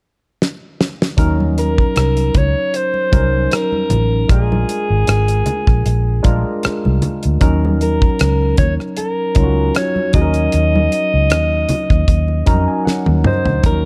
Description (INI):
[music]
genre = lush 1970s-style soul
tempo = 77 BPM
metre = 4/4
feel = swing 54% on 16ths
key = Eb dorian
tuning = A4 = 440 Hz
[part]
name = damped 70s drum kit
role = drums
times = 0.4-13.8 s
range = hi-hat, kick drum, rim click, snare drum, toms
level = -18 LUFS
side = equal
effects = none
[part]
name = barky tine electric piano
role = accompaniment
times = 1.2-13.9 s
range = F3 to Bb5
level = -23 LUFS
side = equal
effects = overdrive, lush chorus
[part]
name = vintage muted fingered electric bass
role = bass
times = 1.2-13.9 s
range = Ab1 to F2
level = -18 LUFS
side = equal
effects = none
[part]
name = congas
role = percussion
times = 1.4-13.4 s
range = none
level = -26 LUFS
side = equal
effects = none
[part]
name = breathy alto saxophone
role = melody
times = 1.6-13.9 s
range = Ab4 to Eb5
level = -22 LUFS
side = equal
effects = none
[sound]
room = small room reverb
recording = dark, warm production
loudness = -16 LUFS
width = mono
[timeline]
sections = 0.0-1.2 A section; 1.2-13.6 B section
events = drum fill 0.4-1.2, 12.9-13.6; tine electric piano fill 12.1-13.6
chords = 0.0 N.C.; 1.2 Ebm7; 4.3 Bb7; 7.4 Ebm7